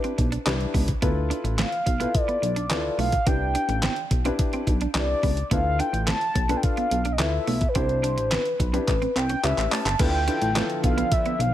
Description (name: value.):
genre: early-eighties boogie funk.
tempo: 107 BPM.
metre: 4/4.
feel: straight.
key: D dorian.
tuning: A4 = 439 Hz.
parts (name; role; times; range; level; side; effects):
mellow horn-like synth lead; melody; 0.0-11.5 s; B4 to A5; -27 LUFS; left 1 dB; chorus.
warm grand piano; accompaniment; 0.0-11.4 s; C#4 to C5; -30 LUFS; left 3 dB; none.
clean electric guitar; riff; 0.0-11.4 s; A3 to D4; -33 LUFS; right 7 dB; analog chorus.
detuned 8-bit digital drum machine; drums; 0.0-11.5 s; crash cymbal, handclaps, hi-hat, kick drum, snare drum; -26 LUFS; equal; none.
chorused synth bass; bass; 0.2-11.5 s; G1 to D2; -26 LUFS; equal; none.
soft string machine; sustained chords; 10.3-11.5 s; D3 to D4; -32 LUFS; equal; ensemble chorus.
room: light reverb.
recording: none.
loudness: -21 LUFS.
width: side -12 dB against mid.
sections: 0.0-10.0 A section; 10.0-11.5 B section.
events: drum fill 8.9-10.0.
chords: 0.0 Cmaj9; 1.0 Dm69; 3.3 Cmaj9; 5.5 Dm69; 7.8 Cmaj9; 8.9 A9; 10.0 Dm69.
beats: 0.46 | 1.02 1.58 2.15 2.71 | 3.27 3.83 4.39 4.95 | 5.51 6.07 6.63 7.19 | 7.75 8.31 8.87 9.44 | 10.00 10.56 11.12.